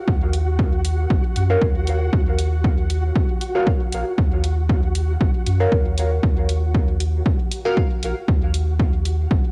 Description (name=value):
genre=dub techno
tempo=117 BPM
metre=4/4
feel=swing 54% on 16ths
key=unclear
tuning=A4 = 441 Hz
part: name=flickering grainy texture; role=texture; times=0.0-9.5 s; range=Gb4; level=-34 LUFS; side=equal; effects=built-in reverb, sidechain pumping, cassette tape
part: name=soft dub sub bass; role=bass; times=0.1-9.4 s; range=Bb1 to Gb2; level=-23 LUFS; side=equal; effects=transformer saturation, sidechain pumping
part: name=electronic kick drum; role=drums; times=0.1-9.4 s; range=none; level=-22 LUFS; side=equal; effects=overdrive, studio reverb, cassette tape
part: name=electronic hi-hat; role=drums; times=0.3-9.2 s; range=none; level=-34 LUFS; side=equal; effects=overdrive, studio reverb, cassette tape
part: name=deep mellow chord stab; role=stabs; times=1.5-7.8 s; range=Gb4 to F5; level=-27 LUFS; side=equal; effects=chorus, phaser, sidechain pumping, cassette tape, dub echo
room=little or no reverb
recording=home recording on cassette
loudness=-20 LUFS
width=mono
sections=0.0-9.5 A section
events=none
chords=0.0 Ebm7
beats=| 0.08 0.59 1.10 1.62 | 2.13 2.64 3.16 3.67 | 4.18 4.69 5.21 5.72 | 6.23 6.75 7.26 7.77 | 8.28 8.80 9.31